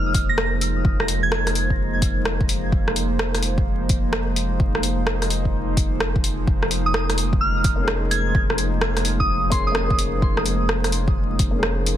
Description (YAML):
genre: future garage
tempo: 128 BPM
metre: 4/4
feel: swing 65% on 16ths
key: F minor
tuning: A4 = 441 Hz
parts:
  - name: soft synth bell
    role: melody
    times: 0.0-1.7, 6.9-10.0 s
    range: C6 to Bb6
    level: -26 LUFS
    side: right 1 dB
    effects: chorus, vintage 12-bit sampler grit, tape echo
  - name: warbly tape-like pad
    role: sustained chords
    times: 0.0-12.0 s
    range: F3 to C5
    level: -27 LUFS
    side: right 1 dB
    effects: chorus, built-in reverb, sidechain pumping
  - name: soft dub sub bass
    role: bass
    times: 0.0-12.0 s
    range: F1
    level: -24 LUFS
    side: equal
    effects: sidechain pumping
  - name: deep house drum kit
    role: drums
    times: 0.1-12.0 s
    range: hi-hat, rim click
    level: -24 LUFS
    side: equal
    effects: overdrive
  - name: electronic kick drum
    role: drums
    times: 0.1-11.5 s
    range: none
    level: -22 LUFS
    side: equal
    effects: overdrive
  - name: dark upright piano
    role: accompaniment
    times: 7.8-12.0 s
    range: Bb3 to Ab4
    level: -30 LUFS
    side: left 3 dB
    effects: sidechain pumping, ping-pong delay
room: light reverb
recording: dense, heavily limited modern master, vinyl crackle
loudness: -18 LUFS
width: side -11 dB against mid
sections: 0.0-12.0 A section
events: none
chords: 0.0 Fm7; 6.5 Bbm7/F